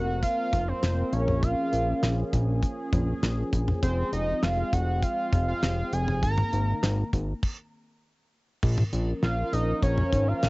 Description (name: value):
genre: synth-pop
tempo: 100 BPM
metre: 4/4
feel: straight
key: Bb minor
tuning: A4 = 435 Hz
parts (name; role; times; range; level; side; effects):
- fat analog lead; melody; 0.0-10.5 s; C5 to Bb5; -29 LUFS; right 1 dB; cassette tape
- sweeping resonant pad; sustained chords; 0.0-10.5 s; Eb3 to Bb4; -33 LUFS; left 1 dB; lush chorus, cassette tape
- fat analog bass; bass; 0.0-10.5 s; F1 to Bb1; -26 LUFS; equal; none
- damped 70s drum kit; drums; 0.2-10.5 s; crash cymbal, hi-hat, kick drum, snare drum, toms; -27 LUFS; equal; cassette tape
room: moderate booth ambience, RT60 0.2 s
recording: home recording on cassette, nothing above 7.9 kHz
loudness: -24 LUFS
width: side -23 dB against mid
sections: 0.0-8.6 A section; 8.6-10.5 B section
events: stop 7.4-8.6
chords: 0.0 Fsus4; 1.1 Bbm7; 3.8 Fm; 6.2 Abadd9; 8.6 Bbm